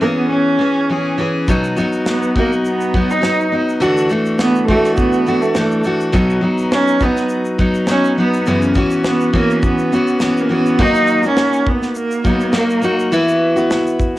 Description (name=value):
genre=acoustic pop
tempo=103 BPM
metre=4/4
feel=swing 55% on 16ths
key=B major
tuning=A4 = 442 Hz
part: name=rich cello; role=melody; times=0.0-13.0 s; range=A3 to D#4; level=-17 LUFS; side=right 2 dB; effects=none
part: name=picked steel-string acoustic guitar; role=accompaniment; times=0.0-14.2 s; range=F#2 to G#4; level=-16 LUFS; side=left 1 dB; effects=cassette tape
part: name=modern studio drum kit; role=drums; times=1.5-14.2 s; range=crash cymbal, kick drum, shaker, snare drum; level=-20 LUFS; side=equal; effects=cassette tape
room=light reverb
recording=home recording on cassette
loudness=-13 LUFS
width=side -16 dB against mid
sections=0.0-10.8 A section; 10.8-14.2 B section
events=none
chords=0.0 E6; 1.5 B; 3.8 Dadd9; 6.1 B; 8.5 F#7sus4; 10.8 D#m; 13.1 Esus2